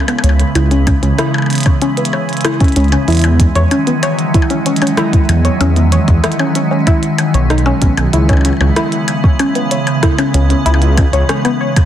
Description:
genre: IDM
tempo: 95 BPM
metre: 4/4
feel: straight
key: C# minor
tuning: A4 = 440 Hz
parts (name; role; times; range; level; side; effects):
- icy glass pad; sustained chords; 0.0-11.9 s; C#3 to B3; -17 LUFS; right 1 dB; chorus, built-in reverb
- glitchy drum kit; drums; 0.0-11.9 s; hi-hat, percussion blips, rim click; -20 LUFS; left 1 dB; digital delay
- warbly dusty pluck; arpeggios; 0.1-11.7 s; B3 to C#5; -17 LUFS; left 2 dB; chorus, digital delay
- dark detuned saw bass; bass; 0.2-11.2 s; B1 to E2; -12 LUFS; equal; none
- electronic kick drum; drums; 0.9-11.9 s; none; -12 LUFS; equal; none
room: light reverb, digital ambience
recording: dense, heavily limited modern master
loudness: -10 LUFS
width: side -11 dB against mid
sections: 0.0-11.9 A section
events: none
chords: 0.0 C#m7; 3.1 Emaj9; 8.1 C#m7

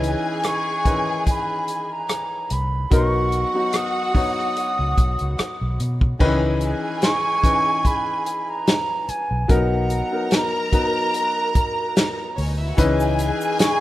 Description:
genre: lush 1970s-style soul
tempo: 73 BPM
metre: 4/4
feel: swing 54% on 16ths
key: C# dorian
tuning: A4 = 440 Hz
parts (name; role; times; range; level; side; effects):
- rich studio violin section; second line; 0.0-13.8 s; C#4 to A#5; -26 LUFS; equal; tape echo
- clear grand piano; accompaniment; 0.0-13.8 s; D#3 to C#5; -25 LUFS; left 2 dB; none
- vintage muted fingered electric bass; bass; 0.0-13.3 s; B1 to B2; -22 LUFS; equal; none
- warm soul drum kit; drums; 0.0-13.8 s; crash cymbal, hi-hat, kick drum, rim click, snare drum; -20 LUFS; equal; none
- concert flute; melody; 0.5-13.8 s; F#5 to D#6; -24 LUFS; right 2 dB; none
- tube shaker; percussion; 12.8-13.8 s; none; -42 LUFS; right 3 dB; none
room: moderate lush hall reverb, RT60 2.2 s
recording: rough home demo mix, lossy compression artefacts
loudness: -18 LUFS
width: side -15 dB against mid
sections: 0.0-6.2 A section; 6.2-13.8 A section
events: none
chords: 0.0 C#m9; 2.9 Bmaj7; 6.2 C#m9; 9.5 Bmaj7; 12.8 C#m9

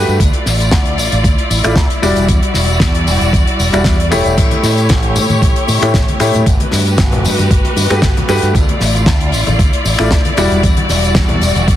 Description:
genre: nu-disco, nu disco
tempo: 115 BPM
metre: 4/4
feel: swing 53% on 16ths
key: unclear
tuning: A4 = 440 Hz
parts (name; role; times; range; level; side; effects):
- bright grand piano; accompaniment; 0.0-10.6 s; G3 to D5; -17 LUFS; left 1 dB; sidechain pumping, slapback echo
- clear studio string section; sustained chords; 0.0-11.8 s; G3 to D5; -18 LUFS; left 1 dB; sidechain pumping
- fingered electric bass with an envelope filter; bass; 0.0-11.8 s; E1 to A2; -16 LUFS; equal; none
- damped 70s drum kit; drums; 0.1-11.8 s; crash cymbal, finger snaps, hi-hat, snare drum, tambourine; -18 LUFS; left 2 dB; none
- electronic kick drum; drums; 0.2-11.8 s; none; -13 LUFS; equal; none
- congas and cabasa; percussion; 4.4-11.8 s; none; -24 LUFS; left 4 dB; none
room: light reverb, studio ambience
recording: heavily compressed radio sound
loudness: -10 LUFS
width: side -12 dB against mid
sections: 0.0-11.8 A section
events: none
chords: 0.2 Dmadd9; 2.0 Em9; 4.4 A7; 6.5 Gmaj9; 8.6 Dmadd9; 10.4 Em9

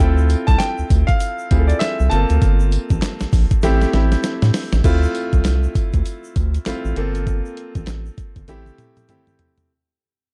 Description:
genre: R&B, new jack swing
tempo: 99 BPM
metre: 4/4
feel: swing 61% on 16ths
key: D minor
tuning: A4 = 440 Hz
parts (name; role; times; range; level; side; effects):
- clear baby grand piano; melody; 0.0-3.9 s; D5 to A5; -27 LUFS; equal; none
- clear grand piano; accompaniment; 0.0-9.7 s; A3 to A4; -27 LUFS; equal; none
- round analog bass; bass; 0.0-8.7 s; G1 to A2; -19 LUFS; equal; none
- tube shaker; percussion; 0.2-9.7 s; none; -47 LUFS; equal; none
- dusty soul sampler-style drum kit; drums; 0.3-9.7 s; crash cymbal, handclaps, hi-hat, kick drum, snare drum, tambourine, toms; -22 LUFS; equal; none
room: digital ambience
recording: dark, warm production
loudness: -18 LUFS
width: mono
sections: 0.0-4.8 A section; 4.8-9.7 B section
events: drum fill 3.6-4.8, 8.5-9.7; fade-out 4.8-9.7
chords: 0.0 Dm9; 2.1 Gm11; 3.6 Am7; 4.8 Dm9; 7.0 Gm11; 8.5 Am7

